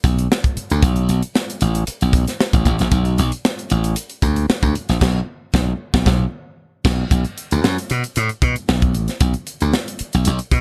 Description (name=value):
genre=funk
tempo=114 BPM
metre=4/4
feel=straight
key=B minor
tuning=A4 = 440 Hz
part: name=glassy slap bass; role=bass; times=0.0-10.6 s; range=A1 to B2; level=-20 LUFS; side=equal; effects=none
part: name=crisp fusion drum kit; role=drums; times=0.0-10.6 s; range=crash cymbal, hi-hat, kick drum, snare drum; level=-21 LUFS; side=equal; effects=none
room=little or no reverb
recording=lossy compression artefacts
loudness=-19 LUFS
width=mono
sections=0.0-7.1 A section; 7.1-10.6 B section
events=band accent 5.0-7.1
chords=none